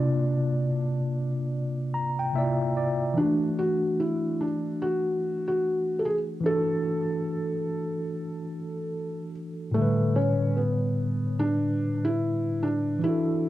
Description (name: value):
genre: hip hop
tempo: 73 BPM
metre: 4/4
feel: swing 60% on 16ths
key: unclear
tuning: A4 = 441 Hz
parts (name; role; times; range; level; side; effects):
- felt-muted upright piano; melody; 0.0-13.5 s; A3 to A4; -28 LUFS; equal; low-pass filter, plate reverb, analog delay
- tine electric piano; accompaniment; 0.0-13.5 s; A2 to Bb5; -27 LUFS; equal; medium stereo tremolo, cassette tape, low-pass filter
room: moderate studio reverb, RT60 0.6 s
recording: cassette tape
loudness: -24 LUFS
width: side -14 dB against mid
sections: 0.0-13.5 A section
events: none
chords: 0.0 C9sus4; 3.2 E9sus4; 9.7 A9sus4